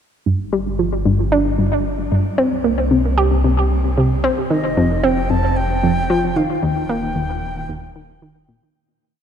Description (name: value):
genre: ambient, sequencer-driven space music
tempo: 113 BPM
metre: 4/4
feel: straight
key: G minor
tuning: A4 = 440 Hz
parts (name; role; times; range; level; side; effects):
- analog pluck; riff; 0.3-8.6 s; Eb2 to G4; -17 LUFS; equal; chorus, shimmer reverb, tape echo
- round analog bass; bass; 0.3-8.7 s; Eb1 to C2; -22 LUFS; equal; none
- wooden flute; melody; 4.5-8.2 s; Eb5 to A5; -24 LUFS; left 1 dB; shimmer reverb, tape echo
room: moderate huge ambient reverb, RT60 8.2 s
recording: dark, warm production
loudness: -16 LUFS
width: side -8 dB against mid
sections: 0.3-8.8 A section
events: fade-out 5.9-8.8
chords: 0.3 G5; 2.4 C5; 4.5 F5; 6.6 Eb